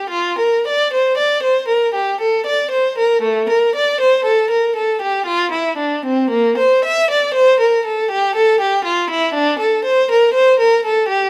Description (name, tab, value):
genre	classical, baroque-style suite movement for unaccompanied violin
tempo	58 BPM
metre	3/4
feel	uneven beats, rubato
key	F major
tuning	A4 = 440 Hz
part	clear violin	solo	0.0-11.3 s	A3 to E5	-16 LUFS	equal	none
room	moderate stone room reverb, RT60 0.9 s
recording	none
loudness	-16 LUFS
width	mono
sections	0.1-11.3 A section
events	none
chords	none